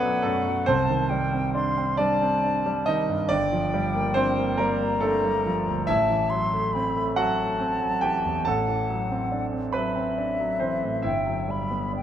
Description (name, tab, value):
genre	classical, impressionist duo for flute and grand piano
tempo	46 BPM (dotted quarters)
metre	6/8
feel	rubato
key	unclear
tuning	A4 = 441 Hz
part	concert flute	melody	0.0-12.0 s	E5 to C6	-28 LUFS	left 2 dB	none
part	clear concert grand piano	accompaniment	0.0-12.0 s	G1 to B5	-24 LUFS	right 1 dB	none
room	moderate concert hall reverb, RT60 2.3 s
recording	close, detailed microphones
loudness	-22 LUFS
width	side -10 dB against mid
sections	0.0-12.0 A section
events	none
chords	0.0 Bm7; 0.7 Cmadd9; 3.3 Gm7; 5.9 Am6; 8.5 D9/A; 11.0 Gmaj7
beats	| 0.68 1.99 | 3.30 4.60 | 5.88 7.16 | 8.46 9.74 | 11.05